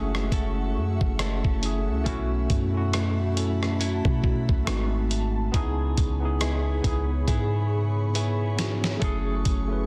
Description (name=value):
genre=contemporary R&B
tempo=69 BPM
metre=4/4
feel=swing 58% on 16ths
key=F# dorian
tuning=A4 = 440 Hz
part: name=tine electric piano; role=accompaniment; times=0.0-9.9 s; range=G#3 to B4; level=-32 LUFS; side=equal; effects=none
part: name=ethereal airy pad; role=sustained chords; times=0.0-9.9 s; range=F#4 to C#6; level=-40 LUFS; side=equal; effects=ensemble chorus, built-in reverb, phaser
part: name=direct-recorded clean electric guitar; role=arpeggios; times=0.0-9.9 s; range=G#2 to A4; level=-38 LUFS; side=equal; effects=digital delay
part: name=warm 808-style bass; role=bass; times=0.0-9.9 s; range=F#1 to B2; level=-29 LUFS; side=equal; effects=none
part: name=dusty soul sampler-style drum kit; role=drums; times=0.1-9.7 s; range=hi-hat, kick drum, rim click, snare drum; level=-29 LUFS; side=equal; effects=vintage 12-bit sampler grit, soft clipping on snare
room=little or no reverb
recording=dense, heavily limited modern master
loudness=-25 LUFS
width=mono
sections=0.0-9.9 A section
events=drum fill 7.3-9.0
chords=0.0 F#m7; 2.1 B7sus4; 4.7 G#7b9; 5.5 C#m7; 9.0 F#m7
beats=0.32 1.19 | 2.06 2.93 3.80 4.67 | 5.54 6.41 7.28 8.15 | 9.02